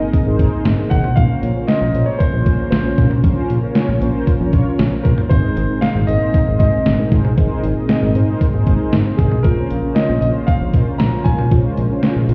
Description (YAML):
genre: synth-pop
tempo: 116 BPM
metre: 4/4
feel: straight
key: unclear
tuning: A4 = 444 Hz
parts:
  - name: mellow synth brass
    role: accompaniment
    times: 0.0-12.3 s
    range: Db4 to Eb5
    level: -26 LUFS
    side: equal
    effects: chorus
  - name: chorused pulse-width pad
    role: sustained chords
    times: 0.0-12.3 s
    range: Bb2 to Db4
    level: -25 LUFS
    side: equal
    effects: none
  - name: detuned 8-bit digital drum machine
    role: drums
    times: 0.1-12.3 s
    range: hi-hat, kick drum, snare drum, toms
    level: -19 LUFS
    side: equal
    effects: overdrive
  - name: fat analog bass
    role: bass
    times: 0.3-12.3 s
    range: Ab1 to Bb1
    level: -19 LUFS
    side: equal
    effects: none
  - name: clear grand piano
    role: melody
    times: 0.9-11.5 s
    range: Ab4 to Bb5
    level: -26 LUFS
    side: equal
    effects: none
room: light reverb, digital ambience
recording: heard muffled through a wall, stone room reverb, EQ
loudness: -16 LUFS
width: mono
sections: 0.0-12.3 A section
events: none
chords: 0.0 Abadd9; 1.2 Bbmadd9; 5.3 Abadd9; 9.4 Bbmadd9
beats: 0.14 0.65 | 1.17 1.69 2.20 2.72 | 3.24 3.76 4.27 4.79 | 5.31 5.83 6.34 6.86 | 7.38 7.89 8.41 8.93 | 9.45 9.96 10.48 11.00 | 11.52 12.03